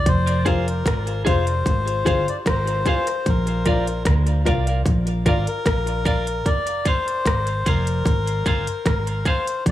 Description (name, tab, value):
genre	dub reggae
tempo	75 BPM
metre	4/4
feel	straight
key	F dorian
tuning	A4 = 439 Hz
part	melodica	melody	0.0-9.7 s	Bb4 to D5	-25 LUFS	left 2 dB	tape echo
part	vintage muted fingered electric bass	bass	0.0-9.7 s	F1 to D2	-22 LUFS	equal	none
part	organic electronic drum kit	drums	0.1-9.7 s	hi-hat, kick drum, rim click	-23 LUFS	equal	none
part	clean electric guitar	accompaniment	0.5-9.5 s	Ab4 to F5	-29 LUFS	right 4 dB	high-pass filter, tape echo
part	clear upright piano	stabs	0.5-9.4 s	F4 to D5	-30 LUFS	left 6 dB	high-pass filter, tape echo
room	light reverb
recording	echo-heavy mix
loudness	-18 LUFS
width	side -13 dB against mid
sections	0.1-9.7 A section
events	filter sweep 3.3-9.7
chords	0.1 Fm; 3.3 Bb; 6.5 Fm